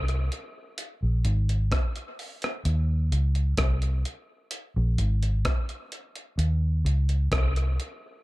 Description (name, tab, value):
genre	dub reggae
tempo	64 BPM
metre	4/4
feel	straight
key	unclear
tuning	A4 = 439 Hz
part	vintage muted fingered electric bass	bass	0.0-7.8 s	Ab1 to Eb2	-23 LUFS	equal	none
part	breakbeat sampler-style drum kit	drums	0.1-8.0 s	hi-hat, kick drum, rim click	-30 LUFS	equal	none
room	little or no reverb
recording	dark, warm production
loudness	-24 LUFS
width	side -20 dB against mid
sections	0.0-8.2 A section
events	none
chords	none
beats	0.78 1.71 | 2.65 3.58 4.52 5.45 | 6.39 7.32